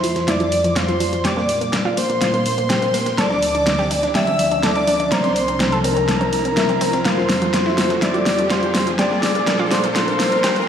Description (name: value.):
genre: progressive house.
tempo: 124 BPM.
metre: 4/4.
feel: straight.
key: F major.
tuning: A4 = 440 Hz.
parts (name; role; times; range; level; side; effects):
warm velvety synth lead; melody; 0.0-10.7 s; Bb4 to E5; -21 LUFS; left 1 dB; chorus, dub echo.
airy dreamy lead; second line; 0.0-10.7 s; Bb5 to E6; -27 LUFS; right 1 dB; chorus, dub echo.
warm analog pad; sustained chords; 0.0-10.7 s; C2 to C5; -25 LUFS; equal; chorus.
analog pluck; arpeggios; 0.0-10.6 s; F3 to Bb4; -23 LUFS; right 1 dB; chorus, dub echo.
dusty soul sampler-style drum kit; drums; 0.0-10.6 s; hi-hat, snare drum; -32 LUFS; equal; none.
pop drum kit; drums; 0.0-10.7 s; hi-hat, snare drum; -22 LUFS; equal; none.
riser; sound effects; 1.5-10.7 s; none; -30 LUFS; equal; none.
room: wet lush hall reverb, RT60 1.7 s.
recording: played on a big sound system in a bare room, large studio reverb, high-pass filter.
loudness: -16 LUFS.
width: side -8 dB against mid.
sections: 0.0-10.7 A section.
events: build-up 0.0-10.7; drum fill 0.0-10.7; filter sweep on analog synth pad 0.0-10.7; riser 1.5-10.7.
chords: 0.0 Fmaj7; 1.2 Bb6; 3.2 Dm7; 5.1 C7sus4; 7.1 Fmaj7; 9.0 Bb6.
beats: 0.28 0.76 | 1.25 1.73 2.21 2.70 | 3.18 3.67 4.15 4.63 | 5.12 5.60 6.08 6.57 | 7.05 7.54 8.02 8.51 | 8.99 9.47 9.96 10.44.